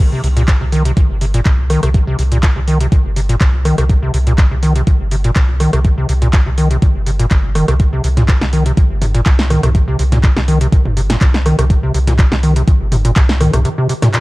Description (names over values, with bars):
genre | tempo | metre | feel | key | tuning
acid house | 123 BPM | 4/4 | straight | C minor | A4 = 440 Hz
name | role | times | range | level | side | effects
acid bass, square | riff | 0.0-14.2 s | Bb2 to Eb3 | -17 LUFS | equal | overdrive, wide subtle chorus, cassette tape, sidechain pumping, tape echo
warm sub bass | bass | 0.2-13.7 s | G1 to C2 | -16 LUFS | equal | sidechain pumping
electro analog drum machine | drums | 0.2-14.2 s | handclaps, hi-hat, rim click, snare drum, toms | -20 LUFS | equal | none
electronic kick drum | drums | 0.5-13.3 s | none | -12 LUFS | equal | overdrive
room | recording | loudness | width
little or no reverb | none | -11 LUFS | side -20 dB against mid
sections
0.0-14.2 A section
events
break 13.7-14.2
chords
0.0 C5